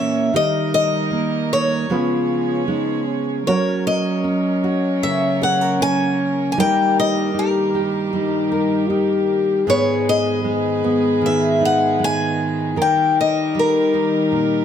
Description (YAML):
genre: acoustic folk-pop ballad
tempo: 77 BPM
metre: 4/4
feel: straight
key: unclear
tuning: A4 = 440 Hz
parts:
  - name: picked old ladder-braced acoustic guitar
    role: melody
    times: 0.0-14.6 s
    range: A#4 to G#5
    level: -20 LUFS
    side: left 2 dB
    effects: none
  - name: mellow French horn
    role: second line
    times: 0.0-14.6 s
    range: C#4 to G#4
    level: -22 LUFS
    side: left 5 dB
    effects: none
  - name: nylon-string guitar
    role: accompaniment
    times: 0.0-14.6 s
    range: G#2 to C#5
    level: -21 LUFS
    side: right 4 dB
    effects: none
  - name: warm chamber string section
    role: sustained chords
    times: 0.0-14.6 s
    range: G2 to D#5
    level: -28 LUFS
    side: right 3 dB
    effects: none
room: light reverb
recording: close, detailed microphones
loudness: -16 LUFS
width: side -8 dB against mid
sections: 0.0-3.5 A section; 3.5-14.6 B section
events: none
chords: 0.3 D#; 1.9 C#7; 3.5 F#; 6.6 D#/G; 9.7 G#m; 12.8 D#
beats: | 0.34 1.12 1.90 2.68 | 3.47 4.25 5.02 5.80 | 6.57 7.35 8.12 8.89 | 9.67 10.44 11.22 11.99 | 12.77 13.54 14.32